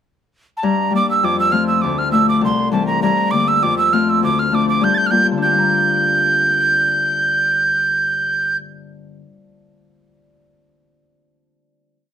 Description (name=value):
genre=celtic folk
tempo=200 BPM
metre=4/4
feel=swing 53% on 8ths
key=G dorian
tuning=A4 = 440 Hz
part: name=breathy mellow mid whistle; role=melody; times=0.6-8.6 s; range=A5 to A6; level=-16 LUFS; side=right 3 dB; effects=none
part: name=Celtic harp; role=accompaniment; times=0.6-9.3 s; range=C2 to Bb5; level=-19 LUFS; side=left 5 dB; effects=none
room=moderate studio reverb, RT60 0.8 s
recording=none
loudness=-14 LUFS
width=side -8 dB against mid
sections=0.0-0.6 pickup bar; 0.6-5.4 A section; 5.4-7.8 final chord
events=none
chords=0.0 N.C.; 0.6 Gm; 1.2 F; 1.8 Dm; 2.4 C; 3.0 Gm; 3.6 F; 4.2 Dm; 4.8 Gm7